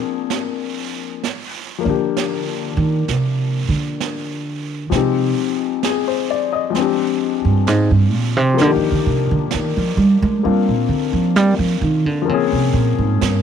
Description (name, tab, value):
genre	jazz ballad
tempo	65 BPM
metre	4/4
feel	swing 67% on 8ths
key	Eb major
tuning	A4 = 440 Hz
part	clear concert grand piano	accompaniment	0.0-13.4 s	F3 to Eb5	-20 LUFS	left 12 dB	none
part	brushed snare drum and snare drum	drums	0.3-13.4 s	none	-28 LUFS	right 11 dB	none
part	upright bass	bass	1.9-13.4 s	G2 to Ab3	-17 LUFS	right 3 dB	none
room	small room reverb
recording	1960s-style stereo with parts hard left and right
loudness	-16 LUFS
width	side -8 dB against mid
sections	0.0-13.4 A section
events	upright bass solo 0.0-13.4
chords	0.0 Bb7; 1.2 Ebmaj7 (rootless); 4.9 Fm7; 6.7 Bb13; 8.6 Ebmaj9; 12.3 Bbm7